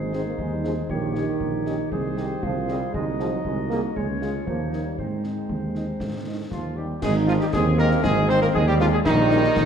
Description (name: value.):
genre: military-style march for wind band.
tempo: 118 BPM.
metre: 2/4.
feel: straight.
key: Ab major.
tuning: A4 = 440 Hz.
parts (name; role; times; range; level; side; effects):
clear euphonium; second line; 0.0-9.7 s; Eb3 to Ab4; -29 LUFS; right 5 dB; none.
warm woodwind section; second line; 0.0-9.7 s; Eb4 to Eb5; -30 LUFS; left 4 dB; none.
dark trombone section; sustained chords; 0.0-9.7 s; Eb3 to Eb4; -29 LUFS; right 2 dB; none.
mellow tuba; bass; 0.0-9.7 s; Ab1 to Ab2; -25 LUFS; right 1 dB; none.
mellow cornet; melody; 0.1-9.7 s; Eb4 to F5; -30 LUFS; equal; none.
mellow French horn section; accompaniment; 0.1-9.4 s; G3 to Ab4; -33 LUFS; left 4 dB; none.
concert snare drum, concert bass drum and clash cymbals; drums; 0.1-9.7 s; none; -32 LUFS; left 2 dB; none.
room: moderate concert hall reverb, RT60 1.8 s.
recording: dark, warm production.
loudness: -21 LUFS.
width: side -8 dB against mid.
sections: 0.0-7.0 A section; 7.0-9.7 A section.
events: none.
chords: 0.0 Ab; 0.9 Eb7/Bb; 1.9 Ab/C; 2.9 Ab7/C; 4.0 Db; 4.5 Eb7; 5.0 Ab; 9.1 Eb7/Bb.